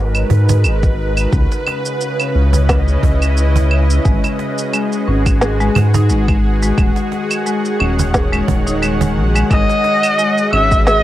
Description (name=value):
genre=organic downtempo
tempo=88 BPM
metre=4/4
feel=swing 55% on 16ths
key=G# minor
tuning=A4 = 439 Hz
part: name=bowed-like drone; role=sustained chords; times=0.0-11.0 s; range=C#3 to F#5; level=-20 LUFS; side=right 1 dB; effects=built-in reverb, sidechain pumping, cassette tape
part: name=round analog bass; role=bass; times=0.0-11.0 s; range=D#1 to G#2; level=-15 LUFS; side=equal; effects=sidechain pumping
part: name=electronic claves, cabasa and snare drum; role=drums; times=0.1-11.0 s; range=none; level=-20 LUFS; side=right 2 dB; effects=cassette tape
part: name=cajon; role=percussion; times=0.1-10.0 s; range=none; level=-21 LUFS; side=right 5 dB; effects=none
part: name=electronic kick drum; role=drums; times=0.8-10.8 s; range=none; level=-16 LUFS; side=equal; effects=overdrive, cassette tape
part: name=marimba with medium hard mallets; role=arpeggios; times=4.1-11.0 s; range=G#3 to G#4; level=-20 LUFS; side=left 3 dB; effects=cassette tape, tape echo
part: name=rich kamancheh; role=melody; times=9.5-11.0 s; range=D#5 to E5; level=-13 LUFS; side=equal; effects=cassette tape, tape echo
room=light reverb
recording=home recording on cassette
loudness=-12 LUFS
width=side -14 dB against mid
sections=0.0-11.0 A section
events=none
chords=0.0 G#m7; 1.3 C#m9; 4.1 G#m7; 6.8 D#m7; 9.5 G#m7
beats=0.64 | 1.32 2.01 2.69 3.37 | 4.05 4.73 5.42 6.10 | 6.78 7.46 8.14 8.82 | 9.51 10.19 10.87